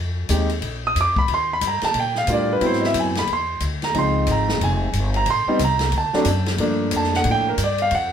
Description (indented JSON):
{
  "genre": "jazz, small-group swing and bop",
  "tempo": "181 BPM",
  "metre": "4/4",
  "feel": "swing 63% on 8ths",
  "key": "unclear",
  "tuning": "A4 = 440 Hz",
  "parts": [
    { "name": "upright bass", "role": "bass", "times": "0.0-8.1 s", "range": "F1 to Bb2", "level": "-24 LUFS", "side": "equal", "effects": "none" },
    { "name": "warm concert grand piano", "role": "accompaniment", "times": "0.3-8.1 s", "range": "F3 to Eb6", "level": "-20 LUFS", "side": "right 1 dB", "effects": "none" },
    { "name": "open jazz drum kit", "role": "drums", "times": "0.3-8.0 s", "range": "hi-hat, kick drum, ride cymbal, snare drum", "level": "-27 LUFS", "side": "left 3 dB", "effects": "none" }
  ],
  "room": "moderate club reverb, RT60 0.6 s",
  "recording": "minimal, uncompressed stereo recording",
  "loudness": "-18 LUFS",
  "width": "side -8 dB against mid",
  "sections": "0.0-8.1 A section",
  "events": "none",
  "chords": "0.0 Fm7; 0.6 Bb5; 1.3 Ebmaj9; 2.6 Ab7alt; 3.9 Dbmaj7; 5.3 Am7b5; 5.9 D7; 6.6 Gm9"
}